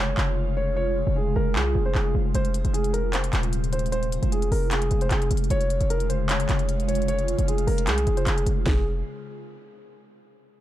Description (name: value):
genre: hip hop, trap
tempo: 152 BPM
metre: 4/4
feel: half-time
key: F minor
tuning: A4 = 440 Hz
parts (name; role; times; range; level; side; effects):
- dark concert grand piano; melody; 0.0-8.8 s; Ab4 to Db5; -29 LUFS; equal; none
- airy breathy pad; sustained chords; 0.0-8.8 s; C3 to F4; -31 LUFS; right 1 dB; chorus, phaser
- hard-hitting 808-style bass; bass; 0.0-9.0 s; Eb1 to C2; -24 LUFS; equal; none
- trap drum kit; drums; 0.2-8.8 s; handclaps, hi-hat, kick drum, snare drum; -28 LUFS; equal; none
room: little or no reverb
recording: dark, warm production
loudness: -22 LUFS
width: side -13 dB against mid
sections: 0.0-8.7 A section; 8.7-10.2 B section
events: break 0.0-2.3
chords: 0.0 Db/F; 2.3 Fm; 5.5 Db/F; 8.7 Fm